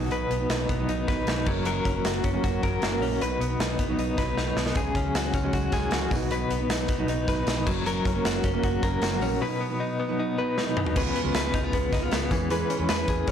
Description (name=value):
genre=jangly indie pop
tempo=155 BPM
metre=4/4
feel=straight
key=unclear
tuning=A4 = 440 Hz
part: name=fingerpicked steel-string acoustic guitar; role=accompaniment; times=0.0-13.3 s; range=F#2 to B4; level=-31 LUFS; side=right 9 dB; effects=none
part: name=direct-recorded clean electric guitar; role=arpeggios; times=0.0-13.3 s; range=B2 to B4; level=-28 LUFS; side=left 5 dB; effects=tremolo, plate reverb
part: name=vintage muted fingered electric bass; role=bass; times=0.0-13.3 s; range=F#1 to E2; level=-32 LUFS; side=equal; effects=none
part: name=big rock drum kit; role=drums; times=0.1-13.3 s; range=crash cymbal, hi-hat, kick drum, snare drum, toms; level=-29 LUFS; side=equal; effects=none
part: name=tambourine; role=percussion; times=4.8-13.2 s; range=none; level=-45 LUFS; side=left 6 dB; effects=none
room=light reverb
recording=blown-out, overdriven recording, overdrive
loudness=-24 LUFS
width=side -8 dB against mid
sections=0.0-11.0 A section; 11.0-13.3 B section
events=drum fill 4.4-4.8, 10.6-11.0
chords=0.0 B; 1.5 F#; 3.2 B; 4.8 C#sus4; 6.1 B; 7.7 F#; 9.4 B; 11.0 C#7; 12.3 E6